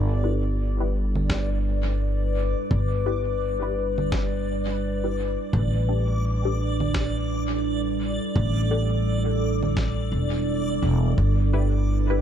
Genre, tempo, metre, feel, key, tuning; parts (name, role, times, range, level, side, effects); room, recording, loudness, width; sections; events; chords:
ambient dub; 85 BPM; 4/4; swing 60% on 16ths; A4 = 440 Hz
warbly tape-like pad; sustained chords; 0.0-12.2 s; G3 to D5; -28 LUFS; right 1 dB; chorus, built-in reverb
upright bass; bass; 0.0-12.2 s; E1 to A1; -24 LUFS; equal
backwards swelling texture; texture; 0.0-12.2 s; D5; -34 LUFS; right 1 dB; built-in reverb
filtered dub chord stab; stabs; 0.2-12.2 s; D4 to B4; -33 LUFS; left 5 dB; phaser, analog chorus, dub echo
electronic congas and snare drum; drums; 1.2-11.3 s; -34 LUFS; right 2 dB; dub echo
electronic kick drum; drums; 1.3-11.3 s; -28 LUFS; equal; overdrive
digital ambience; echo-heavy mix; -22 LUFS; side -9 dB against mid
0.0-12.2 A section
0.0 G6; 5.5 A7sus4